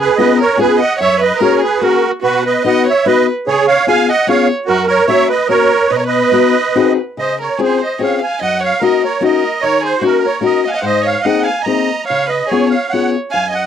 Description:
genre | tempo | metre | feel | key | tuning
musette waltz | 146 BPM | 3/4 | rubato | B major, Db major from 7.2 s | A4 = 440 Hz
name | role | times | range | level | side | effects
musette accordion | melody | 0.0-13.7 s | F#4 to Bb5 | -14 LUFS | right 5 dB | none
warm violin | second line | 0.0-13.7 s | F#4 to F5 | -19 LUFS | right 2 dB | none
fingerpicked steel-string acoustic guitar | accompaniment | 0.0-13.6 s | F#2 to B4 | -15 LUFS | left 7 dB | none
room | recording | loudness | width
light reverb | dry, close 1970s-style studio recording | -11 LUFS | side -8 dB against mid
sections
0.0-7.2 A section; 7.2-13.7 B section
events
none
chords
0.0 C#7; 1.0 F#add9; 2.2 B; 3.5 C#7; 4.7 F#; 5.9 Bmaj7; 6.7 G#7; 7.2 Dbmaj7; 8.4 Gb6; 9.6 Ebm7; 10.8 Abadd9; 12.1 Db7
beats
0.18 0.58 | 0.99 1.40 1.81 | 2.23 2.64 3.06 | 3.46 3.87 4.27 | 4.67 5.08 5.49 | 5.90 6.31 6.73 | 7.15 7.57 7.98 | 8.39 8.80 9.21 | 9.61 10.02 10.43 | 10.84 11.25 11.67 | 12.09 12.51 12.92 | 13.34

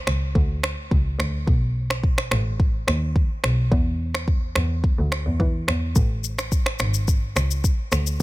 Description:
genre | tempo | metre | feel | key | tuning
afrobeats | 107 BPM | 4/4 | straight | A major | A4 = 435 Hz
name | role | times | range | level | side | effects
warm double bass | bass | 0.0-8.2 s | G#1 to E3 | -23 LUFS | equal | none
afro-pop drum kit | drums | 0.1-8.2 s | finger snaps, kick drum, rim click, shaker | -22 LUFS | equal | soft clipping on snare
room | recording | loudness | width
little or no reverb | dense, heavily limited modern master | -20 LUFS | side -19 dB against mid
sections
0.0-8.2 A section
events
break 0.0-6.0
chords
none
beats
0.35 0.91 | 1.47 2.03 2.60 3.16 | 3.72 4.28 4.84 5.40 | 5.96 6.52 7.08 7.64 | 8.20

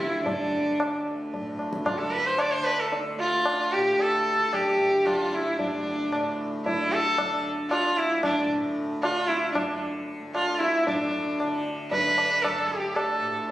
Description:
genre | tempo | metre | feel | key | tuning
indian classical, Hindustani | 113 BPM | 5/4 | straight | D raga kafi | A4 = 441 Hz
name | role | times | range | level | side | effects
clear sarangi | melody | 0.0-13.5 s | D4 to D5 | -24 LUFS | equal | none
tanpura | drone | 0.0-13.5 s | D2 to D3 | -34 LUFS | equal | none
tabla | percussion | 0.0-13.2 s | none | -31 LUFS | equal | none
room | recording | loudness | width
wet recital hall reverb, RT60 1.4 s | recorded on a phone in the room, club reverb | -23 LUFS | side -14 dB against mid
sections
0.0-10.9 A section; 10.9-13.5 B section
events
none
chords
none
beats
| 0.25 0.79 1.33 1.86 2.40 | 2.93 3.46 4.00 4.53 5.06 | 5.59 6.12 6.65 7.18 7.71 | 8.24 8.77 9.30 9.82 10.35 | 10.87 11.40 11.92 12.45 12.97 | 13.49

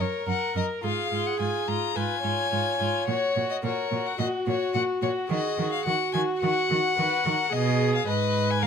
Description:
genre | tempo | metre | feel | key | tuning
quick classical-period movement for string quartet | 108 BPM | 4/4 | straight | F# major | A4 = 440 Hz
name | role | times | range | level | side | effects
warm violin | melody | 0.0-8.7 s | C#5 to A#5 | -28 LUFS | left 7 dB | none
dark violin | second line | 0.0-8.7 s | E#4 to Cb5 | -31 LUFS | left 4 dB | none
warm viola | accompaniment | 0.0-8.7 s | F#4 to C#5 | -30 LUFS | right 2 dB | none
rich cello | bass | 0.0-8.7 s | D2 to D#3 | -29 LUFS | right 4 dB | none
room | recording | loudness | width
light reverb | none | -23 LUFS | side -7 dB against mid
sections
0.0-8.7 A section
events
none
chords
0.0 F#; 0.8 C#/G#; 3.1 F#/A#; 5.3 D#m; 7.5 Abm/Cb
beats
0.27 | 0.84 1.40 1.96 2.52 | 3.08 3.64 4.20 4.75 | 5.30 5.86 6.42 6.97 | 7.53 8.08 8.63

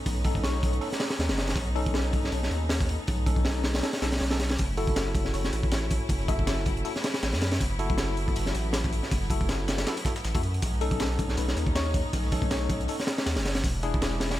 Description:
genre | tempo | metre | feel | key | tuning
drum and bass, jungle | 159 BPM | 4/4 | swing 55% on 16ths | unclear | A4 = 440 Hz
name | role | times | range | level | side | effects
clear symphonic string section | sustained chords | 0.0-14.4 s | F#3 to E4 | -37 LUFS | left 1 dB | none
bell-like tine electric piano | stabs | 0.0-14.4 s | C#4 to A4 | -35 LUFS | left 2 dB | fast stereo tremolo, vintage 12-bit sampler grit, dub echo
saturated sub bass | bass | 0.1-14.4 s | E1 to F#2 | -30 LUFS | equal | tube saturation
crunchy breakbeat drum kit | drums | 0.1-14.4 s | hi-hat, kick drum, snare drum | -28 LUFS | equal | none
soft struck synth lead | melody | 0.4-0.7, 4.8-6.6, 10.8-12.8 s | A4 to E5 | -39 LUFS | left 2 dB | chorus, dub echo
dusty soul sampler-style drum kit | drums | 4.6-14.3 s | hi-hat, snare drum | -40 LUFS | left 2 dB | high-pass filter on hats, high-pass filter on snare
room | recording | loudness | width
little or no reverb | none | -25 LUFS | side -14 dB against mid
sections
0.0-14.4 A section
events
kick drops out 3.8-4.6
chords
0.0 B9; 4.6 F#m7; 10.6 B9; 13.6 E7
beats
| 0.06 0.43 0.81 1.19 | 1.57 1.94 2.32 2.70 | 3.08 3.45 3.83 4.21 | 4.59 4.96 5.34 5.72 | 6.09 6.47 6.85 7.23 | 7.61 7.98 8.36 8.74 | 9.11 9.49 9.87 10.25 | 10.62 11.00 11.38 11.76 | 12.13 12.51 12.89 13.27 | 13.64 14.02 14.40

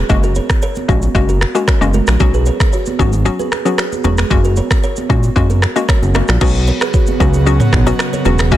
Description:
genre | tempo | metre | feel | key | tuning
afrobeats | 114 BPM | 4/4 | straight | unclear | A4 = 440 Hz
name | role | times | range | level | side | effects
fat analog bass | bass | 0.0-8.6 s | E1 to C#2 | -14 LUFS | equal | none
hollow square pluck | accompaniment | 0.1-8.6 s | F#3 to F#4 | -19 LUFS | left 5 dB | chorus
afro-pop drum kit | drums | 0.1-8.6 s | crash cymbal, finger snaps, kick drum, rim click, shaker, toms | -15 LUFS | equal | vintage 12-bit sampler grit, soft clipping on snare
congas | percussion | 0.1-8.6 s | none | -25 LUFS | right 7 dB | none
kalimba | riff | 0.2-8.3 s | F#4 to D#5 | -22 LUFS | right 5 dB | ping-pong delay
airy breathy pad | sustained chords | 6.8-8.6 s | C#3 to F#4 | -22 LUFS | equal | chorus
room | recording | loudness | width
digital ambience | dense, heavily limited modern master | -11 LUFS | side -13 dB against mid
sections
0.0-6.4 A section; 6.4-8.6 B section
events
none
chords
0.1 F#add9; 2.2 Bsus2; 4.3 F#add9; 6.4 Bsus2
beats
| 0.10 0.62 1.15 1.68 | 2.20 2.73 3.25 3.78 | 4.31 4.83 5.36 5.89 | 6.41 6.94 7.46 7.99 | 8.52

